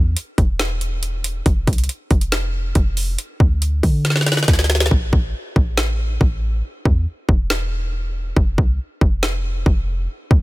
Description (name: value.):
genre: hip hop, trap.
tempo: 139 BPM.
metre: 4/4.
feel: half-time.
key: unclear.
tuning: A4 = 436 Hz.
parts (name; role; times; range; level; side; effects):
clean 808-style bass; bass; 0.0-10.4 s; E1 to D3; -20 LUFS; equal; none.
trap drum kit; drums; 0.2-10.4 s; hi-hat, kick drum, snare drum; -18 LUFS; equal; none.
room: little or no reverb.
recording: dense, heavily limited modern master.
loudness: -16 LUFS.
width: side -20 dB against mid.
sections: 0.0-10.4 A section.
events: drum fill 4.0-4.9; hi-hats muted 4.9-10.4.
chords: none.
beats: 0.16 0.59 1.03 | 1.46 1.89 2.32 2.75 | 3.19 3.62 4.05 4.48 | 4.91 5.34 5.78 6.21 | 6.64 7.07 7.50 7.93 | 8.37 8.80 9.23 9.66 | 10.09.